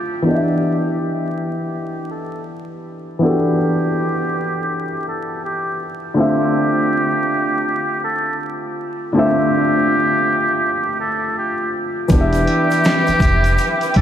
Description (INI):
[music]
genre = lo-fi hip hop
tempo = 81 BPM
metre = 4/4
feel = swing 64% on 16ths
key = E phrygian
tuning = A4 = 441 Hz
[part]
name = felt-muted upright piano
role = accompaniment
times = 0.0-14.0 s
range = D3 to E5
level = -19 LUFS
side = equal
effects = cassette tape, low-pass filter
[part]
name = trumpet with metal mute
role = melody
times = 0.3-14.0 s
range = G4 to A4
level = -21 LUFS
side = right 1 dB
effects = low-pass filter
[part]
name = muted studio string section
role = sustained chords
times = 12.1-14.0 s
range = B4 to D6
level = -24 LUFS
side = equal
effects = low-pass filter
[part]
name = upright bass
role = bass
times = 12.1-14.0 s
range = E1 to G1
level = -18 LUFS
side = equal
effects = none
[part]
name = dusty soul sampler-style drum kit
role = drums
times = 12.1-14.0 s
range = finger snaps, hi-hat, kick drum, snare drum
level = -18 LUFS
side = equal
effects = none
[part]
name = tube shaker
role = percussion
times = 12.1-13.9 s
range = none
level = -40 LUFS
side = right 8 dB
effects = none
[sound]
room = wet cathedral reverb, RT60 5.7 s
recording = dreamy mix soaked in reverb, vinyl crackle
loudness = -16 LUFS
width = side -10 dB against mid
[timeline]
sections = 0.2-12.1 A section; 12.1-14.0 B section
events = break 0.0; filter sweep 0.2-12.1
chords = 0.2 Em7; 6.2 Dm7; 12.1 Em7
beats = | 0.25 0.99 1.73 2.47 | 3.21 3.95 4.69 5.43 | 6.17 6.92 7.66 8.40 | 9.14 9.88 10.62 11.36 | 12.10 12.84 13.58